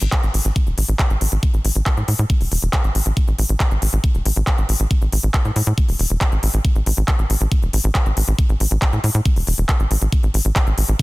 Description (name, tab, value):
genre	psychedelic trance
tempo	138 BPM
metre	4/4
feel	straight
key	unclear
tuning	A4 = 435 Hz
part	tight sequencer bass	bass	0.0-10.9 s	E1 to A2	-18 LUFS	equal	none
part	big-room dance drum kit	drums	0.0-11.0 s	handclaps, hi-hat	-24 LUFS	equal	overdrive, studio reverb
part	electronic kick drum	drums	0.1-11.0 s	none	-17 LUFS	equal	studio reverb
room	digital ambience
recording	dense, heavily limited modern master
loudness	-16 LUFS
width	side -21 dB against mid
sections	0.0-11.0 A section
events	none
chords	none